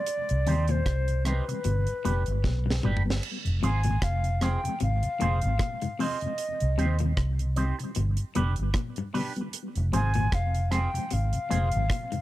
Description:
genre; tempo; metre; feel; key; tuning
roots reggae; 76 BPM; 4/4; swing 57% on 16ths; unclear; A4 = 440 Hz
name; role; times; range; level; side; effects
mellow concert flute; melody; 0.0-12.2 s; B4 to Ab5; -32 LUFS; left 1 dB; tape echo
deep reggae drum kit; drums; 0.1-12.2 s; crash cymbal, hi-hat, kick drum, rim click, snare drum, toms; -32 LUFS; right 1 dB; none
mellow tonewheel organ; accompaniment; 0.3-12.2 s; F2 to C4; -34 LUFS; left 2 dB; slow rotary speaker, tape echo
vintage muted fingered electric bass; bass; 0.3-11.9 s; F1 to Eb2; -26 LUFS; equal; none
electric guitar with an envelope filter; accompaniment; 0.5-11.7 s; B3 to C5; -36 LUFS; right 5 dB; phaser, tape echo
twangy electric guitar; arpeggios; 0.5-12.2 s; G2 to C3; -35 LUFS; left 6 dB; none
room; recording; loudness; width
light reverb; dark, warm production; -25 LUFS; side -15 dB against mid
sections
0.0-3.2 A section; 3.2-12.2 A section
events
drum fill 2.4-3.2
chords
0.1 Cm; 1.6 G; 3.2 Fm; 6.4 Cm; 8.0 G; 9.5 Fm

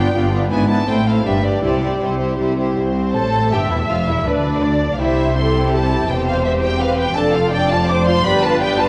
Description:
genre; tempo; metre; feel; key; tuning
quick classical-period movement for string orchestra; 164 BPM; 3/4; straight; C major; A4 = 439 Hz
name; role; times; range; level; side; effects
rich studio violin section; melody; 0.0-8.9 s; C5 to D6; -25 LUFS; equal; none
rich studio violin section; second line; 0.0-8.9 s; C4 to F5; -23 LUFS; equal; none
rich studio viola section; accompaniment; 0.0-8.9 s; G3 to E5; -23 LUFS; equal; none
clear studio cello section; bass; 0.0-8.9 s; C2 to C3; -24 LUFS; equal; none
rich symphonic double bass section; bass; 0.0-8.9 s; E1 to D2; -25 LUFS; equal; none
room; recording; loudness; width
wet concert hall reverb, RT60 2.1 s; worn, warbling old tape, cassette tape, warbly pitch drift; -17 LUFS; mono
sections
0.0-2.8 A section; 2.8-8.9 A section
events
none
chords
0.0 G7; 0.5 E7/G#; 0.9 Am; 1.3 G; 1.6 C; 3.9 Dm69/E; 5.0 C; 6.1 C/E; 7.2 Dm/F; 8.2 G7

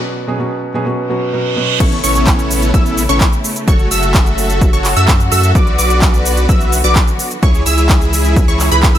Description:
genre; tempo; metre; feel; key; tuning
EDM, festival progressive house; 128 BPM; 4/4; straight; A major; A4 = 441 Hz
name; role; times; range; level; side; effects
felt-muted upright piano; accompaniment; 0.0-1.8 s; B2 to G#4; -18 LUFS; right 1 dB; sidechain pumping, ping-pong delay
reverse cymbal; sound effects; 1.2-1.8 s; none; -20 LUFS; right 8 dB; none
rich studio string section; sustained chords; 1.8-9.0 s; C#3 to F#4; -23 LUFS; left 1 dB; sidechain pumping
wide unison pluck; arpeggios; 1.8-9.0 s; B5 to E6; -20 LUFS; right 1 dB; phaser, sidechain pumping, ping-pong delay
dense compressed supersaw; riff; 1.8-9.0 s; B3 to E5; -19 LUFS; equal; vintage 12-bit sampler grit, sidechain pumping, ping-pong delay
saturated sub bass; bass; 1.8-9.0 s; F#1 to F#2; -16 LUFS; equal; sidechain pumping
big-room dance drum kit; drums; 1.8-9.0 s; crash cymbal, handclaps, hi-hat, shaker; -19 LUFS; right 1 dB; none
electronic kick drum; drums; 1.8-8.9 s; none; -12 LUFS; equal; none
room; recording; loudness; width
digital ambience; none; -10 LUFS; side -11 dB against mid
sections
0.0-1.8 A section; 1.8-9.0 B section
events
break 0.0-1.8; build-up 0.0-1.8; filter sweep on supersaw synth 0.0-1.8; reverse cymbal 1.2-1.8; drop 1.8-9.0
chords
0.0 C#5; 1.8 Aadd9; 3.7 F#m; 5.6 Bm; 7.4 C#m

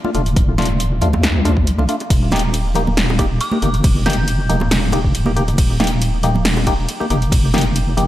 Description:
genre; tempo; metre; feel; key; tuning
deep dubstep; 138 BPM; 4/4; swing 53% on 16ths, half-time; unclear; A4 = 440 Hz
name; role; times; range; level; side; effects
percussive organ stab; stabs; 0.0-8.0 s; A3 to G4; -22 LUFS; left 2 dB; chorus, phaser, dub echo
congas and bongos; percussion; 0.0-8.1 s; none; -25 LUFS; right 3 dB; dub echo
deep soft wobble bass; bass; 0.1-8.1 s; Eb1 to D2; -17 LUFS; equal; chorus, tube saturation
deep house drum kit; drums; 0.1-8.1 s; hi-hat, ride cymbal, snare drum; -22 LUFS; equal; overdrive
electronic kick drum; drums; 0.4-7.4 s; none; -16 LUFS; equal; overdrive
dark detuned synth bell; melody; 3.4-4.4 s; D6 to G6; -28 LUFS; right 1 dB; chorus, dub echo
room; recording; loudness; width
light reverb; none; -14 LUFS; side -14 dB against mid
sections
0.0-8.1 A section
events
none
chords
0.0 Dm; 2.1 Eb

